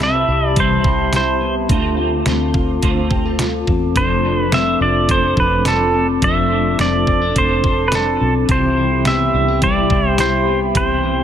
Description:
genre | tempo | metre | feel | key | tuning
dream pop | 106 BPM | 4/4 | straight | C major | A4 = 443 Hz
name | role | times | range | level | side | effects
pedal steel guitar | melody | 0.0-11.2 s | A4 to E5 | -18 LUFS | right 1 dB | ping-pong delay
clean electric guitar | accompaniment | 0.0-11.2 s | C3 to C5 | -24 LUFS | right 5 dB | harmonic tremolo, ensemble chorus
warbly tape-like pad | sustained chords | 0.0-11.2 s | F4 to D6 | -23 LUFS | equal | chorus, built-in reverb
electric guitar at the edge of break-up | arpeggios | 0.0-11.2 s | C3 to A4 | -21 LUFS | left 6 dB | wide subtle chorus, ping-pong delay
vintage muted fingered electric bass | bass | 0.0-11.2 s | F1 to E2 | -22 LUFS | equal | none
detuned 8-bit digital drum machine | drums | 0.0-10.9 s | hi-hat, kick drum, snare drum | -20 LUFS | equal | none
room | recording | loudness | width
light reverb | none | -14 LUFS | side -9 dB against mid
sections
0.0-11.2 A section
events
none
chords
0.0 Cmaj7; 1.7 Dm7; 4.0 F6; 8.5 Cmaj7

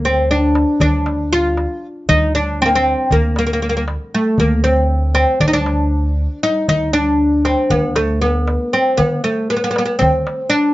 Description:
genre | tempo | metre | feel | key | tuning
Turkish makam ensemble | 235 BPM (eighths) | 9/8 | straight | D makam kurdi, D makam hicaz from 6.7 s | A4 = 440 Hz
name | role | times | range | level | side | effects
oud | melody | 0.0-10.7 s | A3 to F4 | -15 LUFS | equal | none
upright bass | bass | 0.0-10.2 s | D2 to D3 | -19 LUFS | equal | none
darbuka | percussion | 0.3-10.6 s | none | -21 LUFS | equal | none
room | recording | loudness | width
light reverb | nothing above 7.6 kHz | -14 LUFS | side -17 dB against mid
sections
0.0-6.7 A section; 6.7-10.7 B section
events
none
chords
none

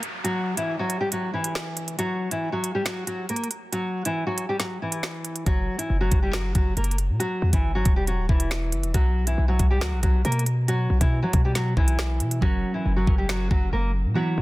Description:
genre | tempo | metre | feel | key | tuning
hip hop, drill | 138 BPM | 4/4 | half-time | unclear | A4 = 440 Hz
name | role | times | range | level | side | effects
drill drum kit | drums | 0.0-13.6 s | finger snaps, hi-hat, kick drum, snare drum | -23 LUFS | equal | soft clipping on snare
downlifter | sound effects | 0.0-2.0 s | none | -38 LUFS | equal | none
nylon-string guitar | melody | 0.2-14.4 s | E3 to A#4 | -27 LUFS | equal | low-pass filter
hard-hitting 808-style bass | bass | 5.5-14.4 s | D1 to F#3 | -24 LUFS | equal | none
glassy digital keys | accompaniment | 12.4-14.4 s | E3 to A#4 | -28 LUFS | right 2 dB | chorus, low-pass filter
room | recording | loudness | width
digital ambience | dense, heavily limited modern master | -22 LUFS | side -19 dB against mid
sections
0.0-14.4 A section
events
break 0.0-5.5; hi-hats muted 12.4-14.4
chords
0.2 N.C.; 2.0 Esus2; 5.5 N.C.; 7.2 Em; 8.9 B5; 12.4 F#

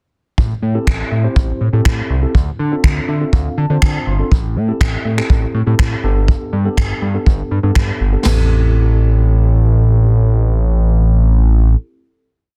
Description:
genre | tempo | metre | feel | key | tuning
dance-pop | 122 BPM | 4/4 | straight | A minor | A4 = 443 Hz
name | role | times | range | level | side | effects
fat analog bass | bass | 0.4-11.8 s | G1 to D3 | -16 LUFS | equal | sidechain pumping
vintage brush drum kit | drums | 0.4-8.4 s | china cymbal, finger snaps, kick drum, snare drum, toms | -18 LUFS | equal | soft clipping on snare
mellow tine electric piano | accompaniment | 0.7-11.8 s | B3 to C6 | -26 LUFS | equal | sidechain pumping
room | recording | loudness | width
small room ambience | dense, heavily limited modern master | -15 LUFS | mono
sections
0.4-8.2 verse; 8.2-12.2 final chord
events
tine electric piano fill 2.8-4.3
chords
0.4 Am7; 2.3 Dm7; 4.3 Am7; 6.0 Gadd9; 8.2 Am7

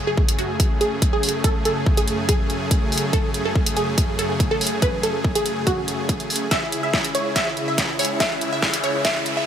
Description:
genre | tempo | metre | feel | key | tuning
heavy wobble dubstep | 142 BPM | 4/4 | half-time | F# minor | A4 = 441 Hz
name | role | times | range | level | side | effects
supersaw chords | sustained chords | 0.0-9.5 s | C#2 to G#4 | -25 LUFS | equal | sidechain pumping
wide unison pluck | melody | 0.1-9.5 s | F#4 to E5 | -25 LUFS | right 1 dB | tape echo
electronic kick drum | drums | 0.2-9.1 s | none | -22 LUFS | equal | overdrive
dubstep drum kit | drums | 0.3-9.3 s | hi-hat, snare drum | -24 LUFS | equal | overdrive, high-pass filter on hats, high-pass filter on snare, high-pass filter on room
riser | sound effects | 7.2-9.5 s | none | -32 LUFS | left 2 dB | none
room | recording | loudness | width
light reverb, digital ambience | high-pass filter | -18 LUFS | side -9 dB against mid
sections
0.0-9.5 A section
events
build-up 0.0-9.5; filter sweep 0.0-9.5; drum fill 6.5-9.5; riser 7.2-9.5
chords
0.0 F#madd9; 6.5 C#m

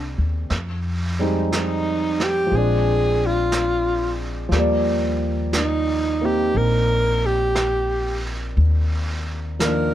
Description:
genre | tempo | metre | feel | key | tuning
jazz ballad | 59 BPM | 4/4 | swing 68% on 8ths | Eb major | A4 = 439 Hz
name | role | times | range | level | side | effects
breathy alto saxophone | melody | 0.0-9.9 s | D4 to Bb4 | -21 LUFS | equal | none
warm grand piano | accompaniment | 0.0-9.9 s | Eb3 to D5 | -25 LUFS | equal | none
upright bass | bass | 0.0-9.9 s | Bb1 to F2 | -23 LUFS | left 1 dB | none
vintage brush drum kit | drums | 0.5-9.9 s | brushed snare drum, hi-hat, snare drum | -30 LUFS | right 2 dB | none
room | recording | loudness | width
little or no reverb | none | -19 LUFS | side -12 dB against mid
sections
0.0-9.9 A section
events
none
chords
0.5 Fm9; 2.5 Bb7; 4.5 Ebmaj7

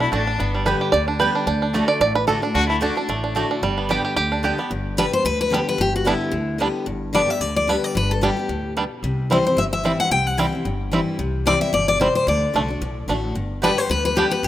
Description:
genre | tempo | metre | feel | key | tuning
bluegrass | 222 BPM | 4/4 | swing 55% on 8ths | G major | A4 = 439 Hz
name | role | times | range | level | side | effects
bluegrass banjo | melody | 0.0-14.2 s | G3 to D5 | -22 LUFS | right 4 dB | none
clear fiddle | second line | 0.0-3.3 s | D4 to F#4 | -26 LUFS | left 4 dB | none
picked steel-string acoustic guitar | accompaniment | 0.0-14.5 s | G2 to G4 | -26 LUFS | left 2 dB | none
upright bass | bass | 0.0-14.5 s | G1 to D2 | -26 LUFS | equal | none
mandolin | stabs | 0.1-4.5, 13.6-14.3 s | A3 to A5 | -28 LUFS | right 5 dB | none
picked steel-string acoustic guitar | melody | 5.0-14.5 s | E4 to G5 | -20 LUFS | left 3 dB | none
room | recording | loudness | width
moderate plate reverb, RT60 2.5 s | rough home demo mix | -18 LUFS | side -13 dB against mid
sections
0.0-4.7 A section; 4.7-14.5 B section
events
five-string banjo solo 0.0-4.7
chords
0.4 G; 1.5 D; 3.6 G; 9.0 C; 12.3 D; 13.4 G

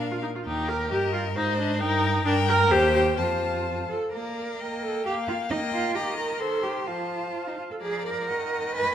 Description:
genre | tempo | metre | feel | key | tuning
quick classical-period movement for string quartet | 123-135 BPM | 2/4 | rubato | unclear | A4 = 440 Hz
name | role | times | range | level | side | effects
rich violin | melody | 0.0-8.9 s | Eb5 to C6 | -33 LUFS | left 8 dB | none
clear violin | second line | 0.0-8.9 s | G4 to F5 | -31 LUFS | left 3 dB | none
warm cello | bass | 0.0-8.9 s | Eb2 to Cb5 | -28 LUFS | right 3 dB | none
clear viola | accompaniment | 0.1-8.9 s | Eb3 to Bb4 | -27 LUFS | right 1 dB | none
room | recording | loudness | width
moderate scoring stage reverb, RT60 2.0 s | none | -23 LUFS | side -9 dB against mid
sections
0.0-4.1 A section; 4.1-8.9 B section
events
none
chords
0.5 Eb; 0.9 Eb/G; 1.4 Ab; 1.8 Eb/G; 2.7 Cm/Eb; 3.2 F; 4.1 Bb; 4.6 Eb/Bb; 5.1 Gm7/Bb; 6.0 Eb; 6.4 Cm/Eb; 6.9 F; 7.8 Bb7/F; 8.3 Ebm

